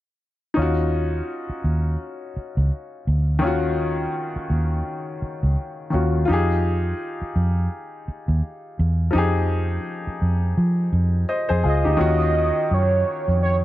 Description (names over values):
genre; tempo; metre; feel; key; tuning
R&B, neo-soul; 84 BPM; 4/4; swing 59% on 16ths; unclear; A4 = 440 Hz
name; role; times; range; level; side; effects
clear baby grand piano; accompaniment; 0.5-13.6 s; Eb3 to Eb5; -25 LUFS; left 2 dB; none
vintage muted fingered electric bass; bass; 0.6-13.6 s; Db2 to F3; -20 LUFS; equal; none
warm velvety synth lead; melody; 11.7-13.6 s; Db5 to Eb5; -22 LUFS; right 3 dB; chorus
room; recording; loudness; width
small room ambience; nothing above 7.8 kHz; -20 LUFS; side -15 dB against mid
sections
0.6-12.0 A section; 12.0-13.6 B section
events
none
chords
0.6 Ebm9; 6.3 Fm9; 12.0 Ebm9